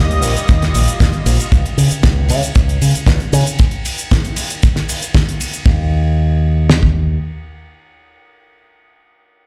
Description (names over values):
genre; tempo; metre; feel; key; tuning
nu-disco, nu disco; 116 BPM; 4/4; straight; Eb mixolydian; A4 = 440 Hz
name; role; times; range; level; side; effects
lush unison pad; sustained chords; 0.0-1.5 s; G3 to Eb5; -25 LUFS; equal; chorus, sidechain pumping
fingered electric bass with an envelope filter; bass; 0.0-7.2 s; Bb1 to Db3; -16 LUFS; equal; sidechain pumping
damped 70s drum kit; drums; 0.1-5.6 s; hi-hat, ride cymbal, shaker, snare drum; -23 LUFS; equal; small room ambience
damped 70s drum kit; drums; 0.5-6.9 s; kick drum, snare drum; -14 LUFS; equal; small room ambience
room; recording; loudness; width
light reverb, studio ambience; played on a big sound system in a bare room, large studio reverb; -15 LUFS; mono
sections
0.0-5.7 A section; 5.7-9.5 B section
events
drop 0.0-5.7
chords
0.0 Ebadd9; 1.5 N.C.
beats
0.49 1.00 | 1.52 2.04 2.56 3.07 | 3.59 4.11 4.63 5.14 | 5.66 6.18 6.70